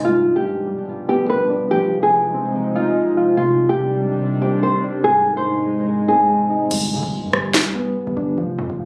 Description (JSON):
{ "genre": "hip hop, drill", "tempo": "144 BPM", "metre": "4/4", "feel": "half-time", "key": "unclear", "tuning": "A4 = 440 Hz", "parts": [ { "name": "nylon-string guitar", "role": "melody", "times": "0.0-6.7 s", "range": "F4 to C5", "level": "-20 LUFS", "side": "equal", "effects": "low-pass filter, delay" }, { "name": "soft electric-piano-like synth keys", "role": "accompaniment", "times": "0.0-8.9 s", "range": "G2 to F4", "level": "-26 LUFS", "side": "equal", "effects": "chorus, tremolo, low-pass filter" }, { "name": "warbly tape-like pad", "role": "sustained chords", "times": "0.0-6.7 s", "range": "B2 to Eb4", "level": "-27 LUFS", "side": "equal", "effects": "chorus, built-in reverb, phaser" }, { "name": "hard-hitting 808-style bass", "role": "bass", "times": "6.7-8.9 s", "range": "F1 to D3", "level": "-31 LUFS", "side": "equal", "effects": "none" }, { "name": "drill drum kit", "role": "drums", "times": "6.7-7.6 s", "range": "crash cymbal, handclaps, rim click, snare drum", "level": "-22 LUFS", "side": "equal", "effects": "none" } ], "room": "moderate studio ambience, RT60 0.5 s", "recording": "recorded on a phone in the room, club reverb", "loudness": "-19 LUFS", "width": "mono", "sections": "0.0-6.7 A section; 6.7-8.9 B section", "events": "break 6.7-8.9", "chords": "0.0 G7; 1.7 Fm7; 3.4 Cmadd9; 5.0 Ab; 6.7 G" }